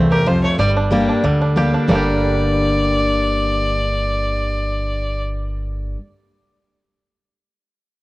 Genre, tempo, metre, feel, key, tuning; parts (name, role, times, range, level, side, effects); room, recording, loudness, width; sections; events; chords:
bluegrass; 185 BPM; 4/4; straight; G minor; A4 = 441 Hz
bluegrass banjo; melody; 0.0-6.0 s; G3 to G4; -23 LUFS; right 3 dB
picked steel-string acoustic guitar; accompaniment; 0.0-6.0 s; E2 to G4; -19 LUFS; left 1 dB; cassette tape
upright bass; bass; 0.0-5.9 s; G1 to D2; -22 LUFS; equal
clear fiddle; melody; 0.1-5.2 s; Bb4 to D5; -21 LUFS; left 1 dB
light reverb, studio reverb; home recording on cassette; -16 LUFS; side -19 dB against mid
0.0-1.9 A section; 1.9-4.5 B section
0.0 F; 0.6 Gm